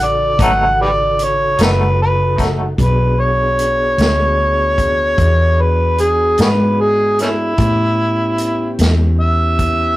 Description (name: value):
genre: slow blues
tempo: 50 BPM (dotted quarters)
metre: 12/8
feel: straight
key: E mixolydian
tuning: A4 = 440 Hz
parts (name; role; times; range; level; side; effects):
- overdriven harmonica; melody; 0.0-10.0 s; A3 to F#5; -15 LUFS; equal; none
- mellow tonewheel organ; sustained chords; 0.0-10.0 s; C#3 to A4; -24 LUFS; equal; slow rotary speaker
- vintage muted fingered electric bass; bass; 0.0-10.0 s; F#1 to A2; -17 LUFS; equal; none
- twangy electric guitar; accompaniment; 0.4-2.6 s; B2 to D#4; -19 LUFS; left 1 dB; tremolo
- vintage drum kit; drums; 0.4-9.8 s; hi-hat, kick drum, snare drum; -19 LUFS; equal; none
room: moderate studio ambience, RT60 0.5 s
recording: rough rehearsal-room recording, tube saturation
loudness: -12 LUFS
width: side -17 dB against mid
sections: 0.0-2.8 A section; 2.8-10.0 B section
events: harmonica solo 2.8-10.0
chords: 0.0 B7; 2.8 E7; 7.6 A7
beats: 0.39 1.58 | 2.78 3.98 5.18 6.38 | 7.58 8.78